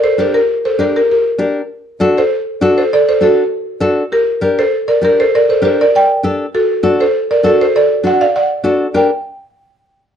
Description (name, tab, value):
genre	latin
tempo	198 BPM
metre	4/4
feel	straight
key	G harmonic minor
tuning	A4 = 439 Hz
part	buzzing marimba with medium mallets	melody	0.0-9.1 s	F#4 to G5	-12 LUFS	right 1 dB	plate reverb
part	nylon-string guitar	accompaniment	0.2-9.1 s	D4 to Bb4	-14 LUFS	left 2 dB	none
room	moderate studio ambience, RT60 0.5 s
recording	dark, warm production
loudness	-11 LUFS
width	side -8 dB against mid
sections	0.0-4.1 A section; 4.1-9.0 B section; 9.0-10.2 C section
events	none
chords	0.0 Gm; 1.7 D7; 4.1 Gm; 6.5 D; 9.0 Gm